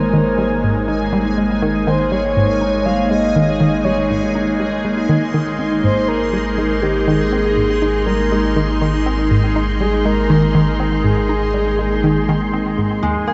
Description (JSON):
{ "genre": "ambient, sequencer-driven space music", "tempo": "121 BPM", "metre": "4/4", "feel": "straight", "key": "Ab major", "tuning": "A4 = 440 Hz", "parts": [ { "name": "breathy flute-like synth lead", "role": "melody", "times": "0.0-12.7 s", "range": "G4 to F5", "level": "-23 LUFS", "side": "equal", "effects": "chorus, analog delay" }, { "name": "evolving wavetable pad", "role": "sustained chords", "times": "0.0-13.3 s", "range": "Eb3 to Eb4", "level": "-22 LUFS", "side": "equal", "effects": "chorus, built-in reverb" }, { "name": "analog pluck", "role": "riff", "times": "0.0-13.3 s", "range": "Eb2 to Eb4", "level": "-22 LUFS", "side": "equal", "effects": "chorus, analog delay" }, { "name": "warm sub bass", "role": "bass", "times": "0.0-13.3 s", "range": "Eb1 to Ab1", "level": "-27 LUFS", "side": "equal", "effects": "none" }, { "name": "bubbling stepped-filter texture", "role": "texture", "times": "0.0-13.3 s", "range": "Ab4 to C6", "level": "-30 LUFS", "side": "equal", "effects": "chorus, built-in reverb" }, { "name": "concert harp", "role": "arpeggios", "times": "13.0-13.3 s", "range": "Ab3 to Ab4", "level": "-22 LUFS", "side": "equal", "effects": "none" } ], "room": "wet huge ambient reverb, RT60 7.6 s", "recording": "dreamy mix soaked in reverb, cassette tape, nothing above 7.8 kHz", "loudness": "-17 LUFS", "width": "mono", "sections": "0.0-13.3 A section", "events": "fade-in on sub bass 0.0-13.3; filter sweep on synth arpeggio sound 0.0-13.3", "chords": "0.0 Absus2" }